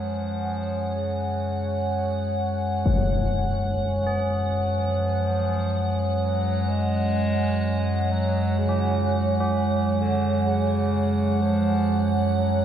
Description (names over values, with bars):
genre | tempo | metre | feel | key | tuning
dark ambient drone | 63 BPM | 4/4 | straight | unclear | A4 = 440 Hz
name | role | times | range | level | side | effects
clear bass clarinet | melody | 0.0-12.6 s | C#3 to G#3 | -33 LUFS | equal | shimmer reverb, diffuse ambient delay
dark analog pad | sustained chords | 0.0-12.6 s | C#5 to G#5 | -28 LUFS | equal | chorus, shimmer reverb
tubular bells | arpeggios | 0.0-12.6 s | C#4 to G#4 | -35 LUFS | right 2 dB | shimmer reverb, diffuse ambient delay
deep rumbling drone | drone | 0.0-12.6 s | F#2 to G#3 | -24 LUFS | equal | built-in reverb
icy glass pad | texture | 0.0-12.6 s | F#5 | -34 LUFS | right 1 dB | chorus, built-in reverb, shimmer reverb
impact | percussion | 2.9-3.0 s | none | -28 LUFS | left 2 dB | low-pass filter on sfx
room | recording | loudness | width
wet cathedral reverb, RT60 5.5 s | none | -22 LUFS | side -9 dB against mid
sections
0.0-12.6 A section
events
fade-in on bass clarinet 0.0-12.6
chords
0.0 F#sus2